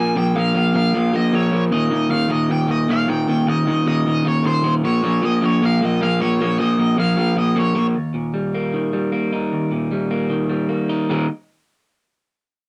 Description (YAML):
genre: rock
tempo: 154 BPM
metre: 4/4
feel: straight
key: Eb mixolydian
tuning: A4 = 440 Hz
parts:
  - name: biting overdriven guitar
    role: melody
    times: 0.0-7.9 s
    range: C5 to Ab5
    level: -26 LUFS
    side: equal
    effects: harmonic tremolo, cassette tape
  - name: electric guitar through a small old amp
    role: riff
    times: 0.0-11.3 s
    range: Eb2 to Eb4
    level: -20 LUFS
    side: equal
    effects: warbly pitch drift, cassette tape
room: little or no reverb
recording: home recording on cassette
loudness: -19 LUFS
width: mono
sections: 0.0-8.0 A section; 8.0-11.1 B section; 11.1-12.7 C section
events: none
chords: 0.0 Bb5; 1.7 Eb5; 4.8 Bbm; 8.0 Eb